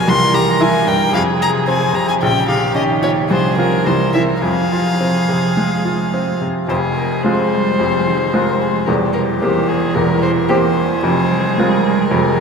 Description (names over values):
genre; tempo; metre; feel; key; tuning
quick classical-period movement for piano quartet; 110 BPM; 4/4; straight; F minor; A4 = 443 Hz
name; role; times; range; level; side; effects
warm violin; melody; 0.0-12.4 s; G4 to C6; -21 LUFS; left 3 dB; none
warm cello; second line; 0.0-12.4 s; C3 to Ab3; -20 LUFS; right 5 dB; none
warm violin; second line; 0.0-12.4 s; G4 to C5; -21 LUFS; left 1 dB; none
bright grand piano; accompaniment; 0.0-12.4 s; E1 to Ab4; -16 LUFS; equal; none
room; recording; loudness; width
wet cathedral reverb, RT60 5.7 s; in a vast, echoing space; -13 LUFS; side -5 dB against mid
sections
0.0-6.7 A section; 6.7-12.4 B section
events
none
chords
0.1 C7; 1.1 Fm; 2.2 Gdim/Bb; 3.3 Fm/C; 3.9 C7; 4.4 Fm; 8.9 C7/E; 11.0 Fm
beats
| 0.07 0.60 1.13 1.68 | 2.22 2.75 3.30 3.86 | 4.42 4.99 5.56 6.13 | 6.69 7.24 7.79 8.33 | 8.88 9.42 9.96 10.50 | 11.04 11.58 12.12